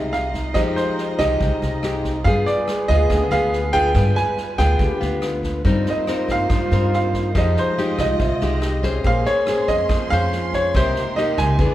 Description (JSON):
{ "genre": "bossa nova", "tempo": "141 BPM", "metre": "4/4", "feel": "straight", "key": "F minor", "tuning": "A4 = 440 Hz", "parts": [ { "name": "clear grand piano", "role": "melody", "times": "0.0-11.7 s", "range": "C5 to Ab5", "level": "-22 LUFS", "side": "right 2 dB", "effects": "none" }, { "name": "breathy trombone", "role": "second line", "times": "0.0-11.7 s", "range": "Eb4 to Ab4", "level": "-28 LUFS", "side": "right 3 dB", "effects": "none" }, { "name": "nylon-string guitar", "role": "accompaniment", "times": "0.0-11.7 s", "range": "C3 to C5", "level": "-24 LUFS", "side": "left 3 dB", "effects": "none" }, { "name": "warm symphonic string section", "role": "sustained chords", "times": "0.0-11.7 s", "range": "Ab3 to C6", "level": "-32 LUFS", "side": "equal", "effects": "none" }, { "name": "upright bass", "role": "bass", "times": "0.0-11.7 s", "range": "Bb1 to G2", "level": "-22 LUFS", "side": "equal", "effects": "none" }, { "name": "swinging big-band drum kit", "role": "drums", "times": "0.1-11.7 s", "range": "kick drum, rim click, snare drum", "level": "-26 LUFS", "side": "equal", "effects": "none" } ], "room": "moderate recital hall reverb, RT60 1.4 s", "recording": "recorded in a church or concert hall", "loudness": "-17 LUFS", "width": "side -14 dB against mid", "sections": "0.0-11.7 A section", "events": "none", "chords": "0.0 Fm9; 2.3 G7b9; 5.7 Cm7/G; 7.4 Fm9; 9.0 Bbm9; 10.7 Cm7" }